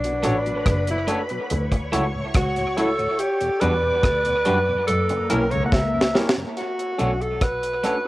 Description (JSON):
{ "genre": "lovers rock reggae", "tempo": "71 BPM", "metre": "4/4", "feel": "straight", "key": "B minor", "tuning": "A4 = 440 Hz", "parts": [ { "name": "warm alto saxophone", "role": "melody", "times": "0.0-8.1 s", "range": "D4 to F#5", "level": "-23 LUFS", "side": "equal", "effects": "cassette tape, tape echo" }, { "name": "soft string machine", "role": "second line", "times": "0.0-6.5 s", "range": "A#3 to D6", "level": "-31 LUFS", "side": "left 1 dB", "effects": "ensemble chorus, cassette tape" }, { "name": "mellow tonewheel organ", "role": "accompaniment", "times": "0.0-6.5 s", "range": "D2 to F#4", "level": "-33 LUFS", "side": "left 1 dB", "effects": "chorus vibrato, slow rotary speaker, cassette tape" }, { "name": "rich double bass", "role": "bass", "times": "0.0-7.8 s", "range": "F#1 to F#2", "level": "-26 LUFS", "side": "equal", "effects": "none" }, { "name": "deep reggae drum kit", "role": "drums", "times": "0.0-8.0 s", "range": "hi-hat, kick drum, rim click, snare drum", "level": "-24 LUFS", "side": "equal", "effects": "cassette tape, analog delay" }, { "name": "barky tine electric piano", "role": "accompaniment", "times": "0.2-8.1 s", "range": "C#4 to C#5", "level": "-30 LUFS", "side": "left 2 dB", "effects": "overdrive, cassette tape" }, { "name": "electric guitar through a small old amp", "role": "stabs", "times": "0.2-8.0 s", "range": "G3 to C#5", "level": "-29 LUFS", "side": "right 1 dB", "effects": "cassette tape, analog delay" } ], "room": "moderate spring reverb, RT60 2.1 s", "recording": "home recording on cassette", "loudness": "-19 LUFS", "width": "side -18 dB against mid", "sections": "0.0-6.6 A section; 6.6-8.1 B section", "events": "alto saxophone solo 0.0-6.6; drum fill 5.7-6.6", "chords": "0.0 Bm9; 1.5 Dmaj9; 3.2 Em9; 4.9 F#7b9; 6.6 Bm9", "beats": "0.66 1.50 2.35 | 3.19 4.04 4.88 5.72 | 6.57 7.42" }